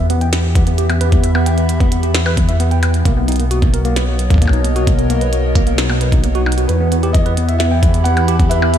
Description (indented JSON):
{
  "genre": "IDM",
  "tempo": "132 BPM",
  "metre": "4/4",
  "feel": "straight",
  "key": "unclear",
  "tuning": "A4 = 441 Hz",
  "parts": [
    { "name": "warbly tape-like pad", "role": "sustained chords", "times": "0.0-8.8 s", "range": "B2 to B5", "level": "-22 LUFS", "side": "equal", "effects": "chorus, built-in reverb, phaser" },
    { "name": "tine electric piano", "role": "arpeggios", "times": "0.0-8.8 s", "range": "A#3 to G5", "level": "-22 LUFS", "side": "right 2 dB", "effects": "medium stereo tremolo, low-pass filter, ping-pong delay" },
    { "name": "dark detuned saw bass", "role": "bass", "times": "0.0-8.8 s", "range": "B1 to E2", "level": "-16 LUFS", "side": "equal", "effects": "none" },
    { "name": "glitchy drum kit", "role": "drums", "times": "0.1-8.8 s", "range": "hi-hat, percussion blips, snare drum", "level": "-23 LUFS", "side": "equal", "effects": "studio reverb" },
    { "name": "electronic kick drum", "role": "drums", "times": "0.6-8.5 s", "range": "none", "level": "-14 LUFS", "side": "equal", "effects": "overdrive, studio reverb" },
    { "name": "felt-muted upright piano", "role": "melody", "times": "6.7-8.8 s", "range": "B4 to F#5", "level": "-20 LUFS", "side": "equal", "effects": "analog delay" }
  ],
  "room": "light reverb",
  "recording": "none",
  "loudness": "-12 LUFS",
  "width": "side -10 dB against mid",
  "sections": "0.0-8.8 A section",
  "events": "filter sweep on tine electric piano 0.0-8.8",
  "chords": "0.0 Em; 3.1 Bmaj7; 6.7 Em",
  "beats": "0.33 0.78 | 1.24 1.69 2.15 2.60 | 3.05 3.51 3.96 4.42 | 4.87 5.33 5.78 6.24 | 6.69 7.14 7.60 8.05 | 8.51"
}